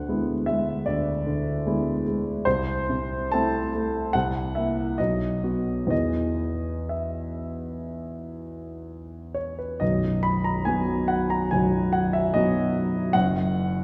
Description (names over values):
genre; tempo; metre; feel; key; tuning
classical, romantic character piece for solo piano; 60-78 BPM; 4/4; rubato; E major, B major from 9.8 s; A4 = 440 Hz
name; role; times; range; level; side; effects
warm grand piano; solo; 0.0-13.8 s; B0 to B5; -26 LUFS; equal; none
room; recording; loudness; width
wet concert hall reverb, RT60 2.0 s; heard from further back in the room; -25 LUFS; mono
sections
0.0-9.8 A section; 9.8-13.8 B section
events
none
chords
0.0 E7/D; 2.5 Am/C; 4.1 C7; 5.0 B; 5.9 E; 9.8 B; 13.1 N.C.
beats
0.09 0.86 1.66 | 2.46 3.32 4.14 4.98 | 5.91 6.91 7.91 8.88 | 9.81 10.66 11.52 12.34 | 13.14